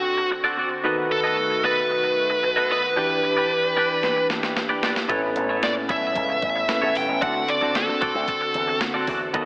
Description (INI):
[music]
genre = 1980s-style pop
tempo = 113 BPM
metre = 4/4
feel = straight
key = unclear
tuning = A4 = 439 Hz
[part]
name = high-gain lead guitar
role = melody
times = 0.0-8.8 s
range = F#4 to G5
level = -22 LUFS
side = equal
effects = distortion
[part]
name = bell-like tine electric piano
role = accompaniment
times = 0.0-9.5 s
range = A2 to C5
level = -28 LUFS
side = equal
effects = medium stereo tremolo, slapback echo
[part]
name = chorused pulse-width pad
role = sustained chords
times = 0.0-9.5 s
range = D3 to G4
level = -32 LUFS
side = equal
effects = none
[part]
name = twelve-string electric guitar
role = riff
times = 0.2-9.5 s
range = B3 to D#5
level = -26 LUFS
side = equal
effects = lush chorus, tape echo, slapback echo
[part]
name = clean 12-bit digital drum machine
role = drums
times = 4.0-9.5 s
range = hi-hat, kick drum, snare drum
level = -28 LUFS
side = equal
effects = overdrive
[part]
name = slap bass with an envelope filter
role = bass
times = 5.1-9.5 s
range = G1 to D3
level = -30 LUFS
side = equal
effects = none
[sound]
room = wet lush hall reverb, RT60 2.5 s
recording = big arena sound, AM radio sound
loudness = -20 LUFS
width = side -28 dB against mid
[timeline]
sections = 0.0-9.5 A section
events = drum fill 4.0-5.1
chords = 0.0 D7; 0.8 B7/D#; 3.0 Em7; 5.1 Aadd9; 7.2 D7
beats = 0.32 | 0.85 1.38 1.91 2.44 | 2.97 3.50 4.03 4.56 | 5.09 5.63 6.16 6.69 | 7.22 7.75 8.28 8.81 | 9.34